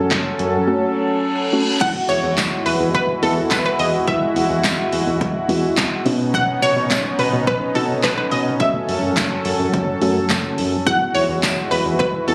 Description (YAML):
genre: dance-pop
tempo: 106 BPM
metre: 4/4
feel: straight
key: E major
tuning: A4 = 443 Hz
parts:
  - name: soft round pluck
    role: accompaniment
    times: 0.0-12.3 s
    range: G#3 to A4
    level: -25 LUFS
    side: equal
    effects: chorus, sidechain pumping
  - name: warm analog pad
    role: sustained chords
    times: 0.0-12.3 s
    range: F#3 to A4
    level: -24 LUFS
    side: equal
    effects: chorus, sidechain pumping
  - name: round analog bass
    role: bass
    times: 0.1-12.3 s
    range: E1 to B2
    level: -26 LUFS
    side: equal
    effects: sidechain pumping
  - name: punchy analog drum machine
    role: drums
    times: 0.1-12.3 s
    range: crash cymbal, handclaps, hi-hat, kick drum, snare drum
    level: -25 LUFS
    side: equal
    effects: none
  - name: reverse cymbal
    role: sound effects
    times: 1.0-1.8 s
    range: none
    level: -28 LUFS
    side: equal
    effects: none
  - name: analog pluck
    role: melody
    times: 1.8-12.3 s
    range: A4 to F#5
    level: -22 LUFS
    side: equal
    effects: chorus, delay
  - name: tambourine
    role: percussion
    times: 2.4-11.6 s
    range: none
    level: -34 LUFS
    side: equal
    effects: none
room: light reverb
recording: recorded on a phone in the room, club reverb, compression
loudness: -19 LUFS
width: mono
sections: 0.0-1.8 A section; 1.8-12.3 B section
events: reverse cymbal 1.0-1.8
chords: 0.0 F#m; 1.8 Eadd9; 6.1 Badd9; 8.6 F#m; 10.9 Eadd9